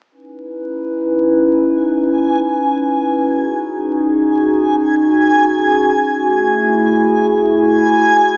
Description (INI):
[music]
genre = drum and bass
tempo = free time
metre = none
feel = none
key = C# minor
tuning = A4 = 440 Hz
[part]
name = warbly tape-like pad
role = sustained chords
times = 0.5-8.4 s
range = A3 to B4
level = -13 LUFS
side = equal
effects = chorus, built-in reverb
[part]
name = backwards swelling texture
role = texture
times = 2.2-8.4 s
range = G#5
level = -16 LUFS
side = equal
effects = built-in reverb
[sound]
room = wet plate reverb, RT60 2.8 s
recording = vinyl crackle, small speaker sound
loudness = -12 LUFS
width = side -27 dB against mid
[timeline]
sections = 0.1-8.4 A section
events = none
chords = 0.1 C#m9; 3.2 G#7sus4; 6.2 F#m9/A